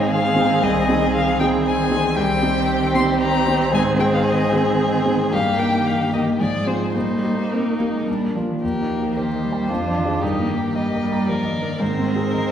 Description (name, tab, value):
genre	quick classical-period movement for piano quintet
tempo	113 BPM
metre	3/4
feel	rubato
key	Eb major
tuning	A4 = 440 Hz
part	rich violin	melody	0.0-12.5 s	Bb4 to C6	-25 LUFS	left 3 dB	none
part	warm cello	second line	0.0-12.5 s	Eb3 to C4	-26 LUFS	right 2 dB	none
part	warm violin	second line	0.0-12.5 s	D4 to Bb4	-26 LUFS	left 2 dB	none
part	rich viola	accompaniment	0.0-12.5 s	Ab3 to Eb4	-25 LUFS	right 3 dB	none
part	warm concert grand piano	accompaniment	0.0-12.5 s	C2 to Bb5	-21 LUFS	equal	none
room	wet recital hall reverb, RT60 1.3 s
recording	heard from further back in the room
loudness	-17 LUFS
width	side -9 dB against mid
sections	0.0-8.6 A section; 8.6-12.5 B section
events	none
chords	0.0 Ab; 0.6 Ab/C; 2.2 Cm; 3.7 Ab; 5.3 Eb/G; 6.4 Fm/Ab; 6.9 Eb/Bb; 8.1 Bb; 8.6 Eb; 9.7 Ddim/F; 10.2 Eb/G; 11.8 Ab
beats	0.09 | 0.62 1.13 1.65 | 2.16 2.68 3.21 | 3.73 4.25 4.78 | 5.32 5.85 6.39 | 6.95 7.51 8.07 | 8.62 9.16 9.69 | 10.22 10.75 11.28 | 11.81 12.34